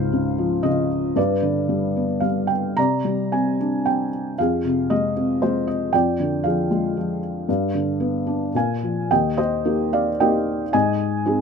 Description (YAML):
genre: classical, lyrical solo piano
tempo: 113 BPM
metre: 3/4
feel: uneven beats, rubato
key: C minor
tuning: A4 = 440 Hz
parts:
  - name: felt-muted upright piano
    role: solo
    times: 0.0-11.4 s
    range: Db2 to Bb5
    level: -19 LUFS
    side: equal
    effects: none
room: light reverb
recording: close, detailed microphones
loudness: -19 LUFS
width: side -6 dB against mid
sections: 0.0-9.1 A section; 9.1-11.4 B section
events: none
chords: 0.0 Dbmaj7; 1.2 G; 2.8 Csus2; 4.4 Fm7; 5.9 Ddim/F; 7.5 G; 8.5 Bb5; 9.1 Eb; 10.7 Ab